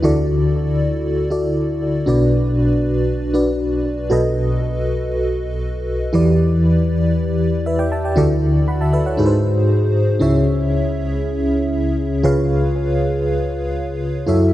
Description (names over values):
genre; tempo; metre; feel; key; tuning
pop; 118 BPM; 4/4; straight; unclear; A4 = 440 Hz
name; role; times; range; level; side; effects
FM electric piano with soft pad layer; solo; 0.0-14.5 s; B1 to B5; -15 LUFS; equal; chorus, tremolo, analog delay
room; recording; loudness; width
moderate lush hall reverb, RT60 2.8 s; home recording on cassette; -16 LUFS; side -14 dB against mid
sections
0.0-10.2 A section; 10.2-14.5 A section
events
none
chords
0.0 Dadd9; 2.1 Bm; 4.1 B7; 6.1 Em7; 8.2 Dadd9; 9.2 G#7; 10.2 C#m; 12.2 C#7